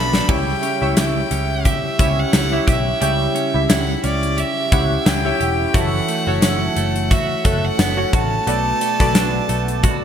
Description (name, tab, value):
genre	1980s-style pop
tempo	88 BPM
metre	4/4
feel	swing 55% on 16ths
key	unclear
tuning	A4 = 440 Hz
part	bright violin	melody	0.0-10.0 s	D5 to B5	-23 LUFS	equal	none
part	chorused retro synth keys	accompaniment	0.0-10.0 s	B2 to G5	-23 LUFS	left 1 dB	none
part	twelve-string electric guitar	riff	0.0-10.0 s	E3 to A4	-26 LUFS	right 5 dB	lush chorus, ping-pong delay
part	vintage muted picked electric bass	bass	0.0-9.9 s	E1 to C#2	-22 LUFS	equal	none
part	gated 80s drum kit	drums	0.1-10.0 s	crash cymbal, hi-hat, kick drum, snare drum, tambourine	-19 LUFS	equal	gated reverb
room	moderate plate reverb, RT60 3.6 s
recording	bright 1980s-style digital production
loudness	-16 LUFS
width	side -8 dB against mid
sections	0.0-10.0 A section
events	drum fill 0.0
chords	0.3 C#dim; 5.7 F#m7; 8.5 Bm7